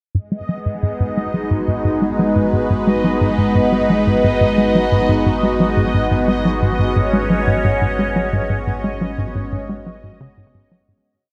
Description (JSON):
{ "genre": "ambient, sequencer-driven space music", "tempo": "88 BPM", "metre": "4/4", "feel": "straight", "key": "G# minor", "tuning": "A4 = 440 Hz", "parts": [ { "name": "phased analog pad", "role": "sustained chords", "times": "0.6-11.1 s", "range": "G#3 to C#5", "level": "-20 LUFS", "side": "equal", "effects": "phaser, chorus, shimmer reverb" }, { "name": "tight sequencer bass", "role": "riff", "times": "0.1-10.9 s", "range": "G#2 to G#3", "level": "-21 LUFS", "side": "equal", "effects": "delay" }, { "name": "warm sub bass", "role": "bass", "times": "0.1-11.0 s", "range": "G#1", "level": "-31 LUFS", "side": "equal", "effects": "none" }, { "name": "bubbling stepped-filter texture", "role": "texture", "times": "0.1-11.1 s", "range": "D#5", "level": "-28 LUFS", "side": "equal", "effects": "chorus, built-in reverb, shimmer reverb" } ], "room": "wet huge ambient reverb, RT60 8.0 s", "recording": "none", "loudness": "-17 LUFS", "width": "mono", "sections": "0.1-11.1 A section", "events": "fade-in on sub bass 0.1-11.1; filter sweep on analog synth bass 0.1-11.1; fade-out 7.4-11.1", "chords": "0.1 G#m7" }